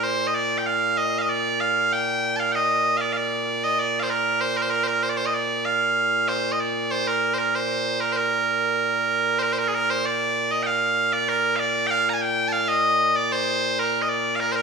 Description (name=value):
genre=scottish traditional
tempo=96 BPM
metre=4/4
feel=straight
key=Bb major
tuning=A4 = 440 Hz
part: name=loud bright bagpipes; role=solo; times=0.0-14.6 s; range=Bb2 to Bb5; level=-20 LUFS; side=right 1 dB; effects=none
room=wet recital hall reverb, RT60 1.4 s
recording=studio ambience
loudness=-20 LUFS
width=side -5 dB against mid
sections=0.0-9.4 A section; 9.4-14.6 B section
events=none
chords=none